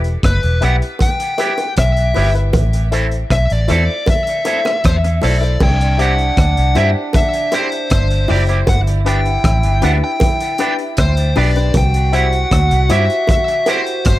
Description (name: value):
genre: roots reggae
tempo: 78 BPM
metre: 4/4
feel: straight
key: unclear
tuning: A4 = 441 Hz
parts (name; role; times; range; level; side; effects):
- warm upright piano; stabs; 0.0-13.9 s; D4 to C5; -24 LUFS; left 7 dB; none
- vintage muted fingered electric bass; bass; 0.0-14.2 s; E1 to G2; -15 LUFS; equal; none
- crunchy breakbeat drum kit; drums; 0.0-14.2 s; crash cymbal, hi-hat, kick drum, rim click; -18 LUFS; equal; analog delay
- smooth overdriven lead guitar; melody; 0.3-14.2 s; B4 to G5; -19 LUFS; left 2 dB; tape echo
- electric guitar with an envelope filter; accompaniment; 0.6-13.8 s; G3 to A4; -24 LUFS; right 4 dB; tape echo
- bongos; percussion; 1.0-13.8 s; none; -25 LUFS; right 3 dB; none
- clear trombone; second line; 5.6-14.2 s; D4 to F#4; -25 LUFS; right 6 dB; tape echo
room: small room ambience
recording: echo-heavy mix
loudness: -12 LUFS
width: side -15 dB against mid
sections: 0.0-5.6 A section; 5.6-14.2 B section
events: none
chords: 0.0 Em; 2.5 Am; 5.6 C; 8.7 G; 11.7 C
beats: 0.23 1.00 1.77 | 2.54 3.30 4.07 4.84 | 5.61 6.37 7.14 7.91 | 8.68 9.44 10.21 10.98 | 11.75 12.51 13.28 14.05